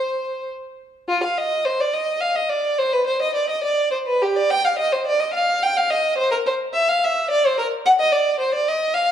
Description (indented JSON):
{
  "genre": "classical, baroque-style suite movement for unaccompanied violin",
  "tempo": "106 BPM",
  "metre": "3/4",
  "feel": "rubato",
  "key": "C minor",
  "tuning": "A4 = 442 Hz",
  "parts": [
    { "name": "rich violin", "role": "solo", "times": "0.0-9.1 s", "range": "F4 to G5", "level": "-18 LUFS", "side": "equal", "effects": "none" }
  ],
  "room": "moderate scoring stage reverb, RT60 1.7 s",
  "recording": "dark, warm production",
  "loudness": "-18 LUFS",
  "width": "side -9 dB against mid",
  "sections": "0.0-1.1 A section; 1.1-9.1 A section",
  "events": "none",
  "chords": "none"
}